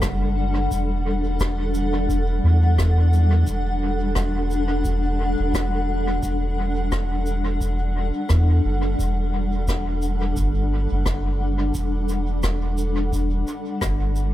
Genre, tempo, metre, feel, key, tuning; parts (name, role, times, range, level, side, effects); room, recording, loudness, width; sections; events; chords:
ambient dub; 87 BPM; 4/4; swing 58% on 16ths; E minor; A4 = 440 Hz
granular cloud pad; sustained chords; 0.0-14.3 s; G3 to F#5; -25 LUFS; left 1 dB; built-in reverb
soft dub sub bass; bass; 0.0-14.3 s; E1 to E2; -21 LUFS; equal
electronic kick drum; drums; 0.0-14.0 s; -28 LUFS; equal
rim click and shaker; drums; 0.0-14.3 s; -31 LUFS; left 1 dB; dub echo
little or no reverb; echo-heavy mix; -20 LUFS; side -14 dB against mid
0.0-14.3 A section
0.0 Em11